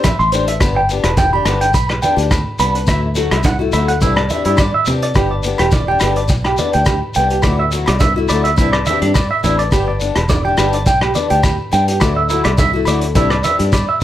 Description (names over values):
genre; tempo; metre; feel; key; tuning
highlife guitar band; 105 BPM; 4/4; swing 53% on 16ths; G major; A4 = 439 Hz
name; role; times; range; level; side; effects
picked old ladder-braced acoustic guitar; accompaniment; 0.0-14.0 s; E3 to G4; -21 LUFS; left 7 dB; none
clean electric guitar; arpeggios; 0.0-14.0 s; D4 to C6; -18 LUFS; right 2 dB; harmonic tremolo, slapback echo
vintage drum kit; drums; 0.0-13.9 s; hi-hat, kick drum, rim click; -19 LUFS; equal; none
agogo bells; percussion; 0.0-13.9 s; none; -26 LUFS; equal; none
shekere; percussion; 0.0-14.0 s; none; -25 LUFS; left 2 dB; none
congas; percussion; 0.1-13.9 s; none; -24 LUFS; right 3 dB; none
fingered electric bass; bass; 0.2-14.0 s; E1 to C3; -19 LUFS; equal; none
room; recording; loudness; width
moderate studio reverb, RT60 0.6 s; none; -12 LUFS; side -12 dB against mid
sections
0.6-14.0 A section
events
none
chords
0.0 Cadd9; 0.6 G; 2.9 Dadd9; 4.0 Cadd9; 5.2 G; 7.4 Dadd9; 8.6 Cadd9; 9.7 G; 12.0 Dadd9; 13.2 Cadd9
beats
0.05 | 0.62 1.18 1.75 2.32 | 2.88 3.45 4.02 4.59 | 5.16 5.73 6.30 6.87 | 7.44 8.01 8.58 9.15 | 9.72 10.30 10.87 11.44 | 12.01 12.58 13.16 13.73